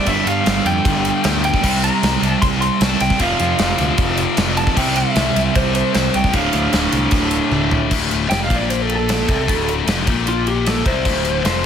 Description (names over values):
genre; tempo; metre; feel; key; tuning
hard rock; 153 BPM; 4/4; straight; D minor; A4 = 440 Hz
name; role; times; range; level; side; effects
lightly driven lead guitar; melody; 0.0-11.7 s; F4 to C6; -22 LUFS; equal; none
overdriven semi-hollow guitar; riff; 0.0-7.9 s; D2 to C4; -22 LUFS; right 10 dB; none
scooped high-gain guitar; riff; 0.0-11.6 s; D2 to C4; -21 LUFS; left 9 dB; distortion
fuzz fingered electric bass; bass; 0.1-11.6 s; D1 to G2; -22 LUFS; equal; overdrive
gated 80s drum kit; drums; 0.1-11.5 s; crash cymbal, kick drum, ride cymbal, snare drum, toms; -20 LUFS; equal; none
room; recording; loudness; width
small room ambience; heavily compressed radio sound, multiband compression; -15 LUFS; side -8 dB against mid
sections
0.0-7.9 A section; 7.9-11.7 B section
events
drum fill 7.5-7.9; lead electric guitar solo 7.9-11.7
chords
0.1 G5; 1.6 C5; 3.2 F5; 4.8 C; 6.3 Dm